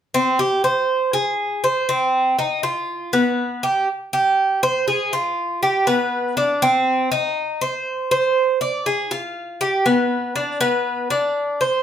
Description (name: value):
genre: latin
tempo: 120 BPM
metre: 4/4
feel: straight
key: C harmonic minor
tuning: A4 = 435 Hz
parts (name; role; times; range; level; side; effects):
- Cuban tres; solo; 0.1-11.8 s; B3 to D5; -18 LUFS; equal; none
room: wet studio reverb, RT60 0.7 s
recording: heard from further back in the room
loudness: -18 LUFS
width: side -9 dB against mid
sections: 0.0-3.9 A section; 3.9-11.8 B section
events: none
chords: none